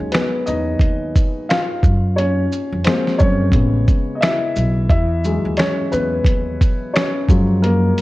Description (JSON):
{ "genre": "lo-fi hip hop", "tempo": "88 BPM", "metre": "4/4", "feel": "swing 58% on 16ths", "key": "E major", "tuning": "A4 = 441 Hz", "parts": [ { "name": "dark upright piano", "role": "accompaniment", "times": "0.0-8.0 s", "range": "C#3 to F5", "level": "-19 LUFS", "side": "left 1 dB", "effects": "low-pass filter" }, { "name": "upright bass", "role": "bass", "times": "0.0-7.9 s", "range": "A1 to F#2", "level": "-19 LUFS", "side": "equal", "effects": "none" }, { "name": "lo-fi sampler-style drum kit", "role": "drums", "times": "0.1-8.0 s", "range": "finger snaps, hi-hat, kick drum, shaker, snare drum", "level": "-17 LUFS", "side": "equal", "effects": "none" } ], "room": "light reverb", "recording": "cassette tape", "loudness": "-15 LUFS", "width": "side -18 dB against mid", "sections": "0.0-8.0 A section", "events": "upright piano solo 0.0-8.0", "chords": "0.0 Emaj9; 1.8 F#maj9; 3.5 Amaj9; 4.9 Emaj9; 7.3 F#maj9", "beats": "0.13 0.81 1.49 | 2.17 2.85 3.54 4.22 | 4.90 5.58 6.26 6.94 | 7.63" }